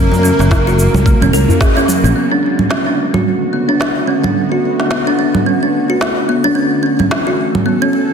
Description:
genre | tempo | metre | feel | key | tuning
organic downtempo | 109 BPM | 4/4 | swing 58% on 16ths | B dorian | A4 = 436 Hz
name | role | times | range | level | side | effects
breathy flute-like synth lead | melody | 0.0-1.6 s | A#4 | -21 LUFS | right 1 dB | ensemble chorus, digital delay
bowed-like drone | sustained chords | 0.0-8.1 s | C#3 to A4 | -20 LUFS | equal | built-in reverb, sidechain pumping
kalimba | arpeggios | 0.0-8.1 s | F#3 to A#4 | -15 LUFS | equal | low-pass filter, ping-pong delay
sustaining fretless electric bass | bass | 0.0-2.1 s | E1 to F#2 | -13 LUFS | equal | sidechain pumping
electronic shaker, snare drum and congas | drums | 0.1-7.6 s | none | -18 LUFS | right 2 dB | overdrive
djembe | percussion | 0.1-2.0 s | none | -20 LUFS | left 1 dB | none
electronic kick drum | drums | 0.5-1.7 s | none | -13 LUFS | equal | none
room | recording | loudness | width
moderate lush hall reverb, RT60 2.0 s, digital ambience | dense, heavily limited modern master | -11 LUFS | side -6 dB against mid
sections
0.0-2.2 A section; 2.2-8.1 B section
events
band accent 1.6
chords
0.0 F#add9; 2.2 Bm7; 6.6 A

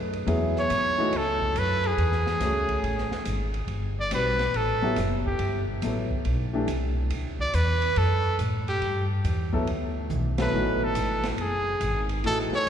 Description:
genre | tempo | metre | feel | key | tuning
modal jazz | 140 BPM | 4/4 | swing 66% on 8ths | G major | A4 = 440 Hz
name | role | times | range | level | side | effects
upright bass | bass | 0.0-12.7 s | F#1 to A2 | -28 LUFS | equal | none
open jazz drum kit | drums | 0.1-12.7 s | hi-hat, kick drum, ride cymbal, snare drum, toms | -36 LUFS | right 2 dB | none
clear grand piano | accompaniment | 0.3-6.7, 9.5-12.7 s | E3 to B4 | -30 LUFS | left 2 dB | none
bright trumpet | melody | 0.6-12.7 s | G4 to D5 | -27 LUFS | right 1 dB | none
room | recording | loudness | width
wet church reverb, RT60 3.7 s | recorded in a church or concert hall | -23 LUFS | side -9 dB against mid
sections
0.0-12.7 A section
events
drum fill 10.1-10.5; band accent 10.3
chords
0.0 Amaj9; 3.7 Gmaj9; 10.5 Amaj7sus2

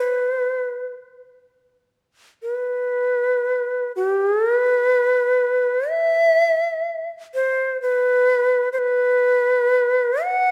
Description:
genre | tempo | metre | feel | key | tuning
japanese traditional, Japanese chamber music | 62 BPM | 4/4 | rubato | unclear | A4 = 440 Hz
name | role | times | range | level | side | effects
bright shakuhachi | solo | 0.0-10.5 s | B4 to F#5 | -20 LUFS | equal | none
room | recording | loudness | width
light reverb | none | -20 LUFS | mono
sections
0.0-4.0 A section; 4.0-10.5 B section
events
none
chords
none

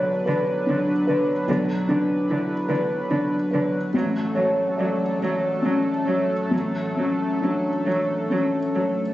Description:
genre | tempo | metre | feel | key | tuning
neoclassical piano and strings | 44-50 BPM (dotted quarters) | 6/8 | rubato | unclear | A4 = 439 Hz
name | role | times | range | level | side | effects
felt-muted upright piano | accompaniment | 0.0-9.1 s | A1 to D5 | -22 LUFS | left 1 dB | none
chorused pulse-width pad | sustained chords | 0.0-9.1 s | F#3 to B4 | -28 LUFS | equal | none
rich cello | second line | 0.3-8.8 s | D3 to F#3 | -29 LUFS | right 2 dB | none
room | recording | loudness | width
light reverb | recorded on a phone in the room, studio reverb, nothing above 7.8 kHz | -20 LUFS | side -15 dB against mid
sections
0.0-9.1 A section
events
none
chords
0.0 Bm; 3.9 F#m/A

